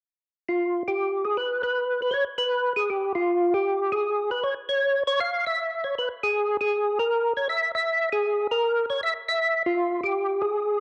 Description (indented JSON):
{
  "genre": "jazz",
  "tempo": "157 BPM",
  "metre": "4/4",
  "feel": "swing 65% on 8ths",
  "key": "unclear",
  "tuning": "A4 = 440 Hz",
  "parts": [
    { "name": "percussive tonewheel organ", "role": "solo", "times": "0.5-10.8 s", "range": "F4 to F5", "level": "-25 LUFS", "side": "equal", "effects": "slow rotary speaker, chorus vibrato, cassette tape" }
  ],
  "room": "wet spring reverb, RT60 1.9 s, digital ambience",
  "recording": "home recording on cassette",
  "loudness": "-25 LUFS",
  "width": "mono",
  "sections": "0.6-10.8 A section",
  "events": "none",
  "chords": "none"
}